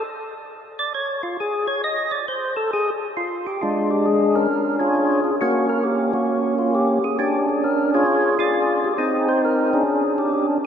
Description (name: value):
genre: jazz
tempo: 134 BPM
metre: 4/4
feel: swing 66% on 8ths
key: unclear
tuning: A4 = 440 Hz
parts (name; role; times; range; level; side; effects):
- percussive tonewheel organ; solo; 0.0-10.6 s; Ab3 to Eb5; -18 LUFS; equal; slow rotary speaker, overdrive
room: wet cathedral reverb, RT60 5.0 s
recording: in a vast, echoing space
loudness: -18 LUFS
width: side -8 dB against mid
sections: 0.0-3.6 A section; 3.6-10.7 B section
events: tonewheel organ solo 0.0-3.6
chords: 0.0 N.C.; 3.6 Bb7#9; 5.4 Bbm6; 7.2 Bb7#9/C#; 9.0 Cm9; 9.9 Db5